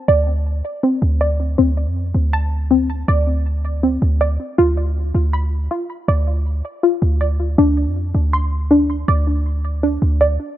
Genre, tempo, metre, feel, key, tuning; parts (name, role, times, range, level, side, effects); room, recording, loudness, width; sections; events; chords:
hip hop, trap; 160 BPM; 4/4; half-time; D dorian; A4 = 440 Hz
warbly dusty pluck; arpeggios; 0.0-10.6 s; C4 to C6; -18 LUFS; equal; chorus, digital delay
warm 808-style bass; bass; 0.1-10.4 s; D2 to F2; -17 LUFS; equal
light reverb; dark, warm production; -16 LUFS; side -13 dB against mid
0.0-10.6 A section
0.0 Am/D; 4.6 Dm6; 7.6 D7(no3)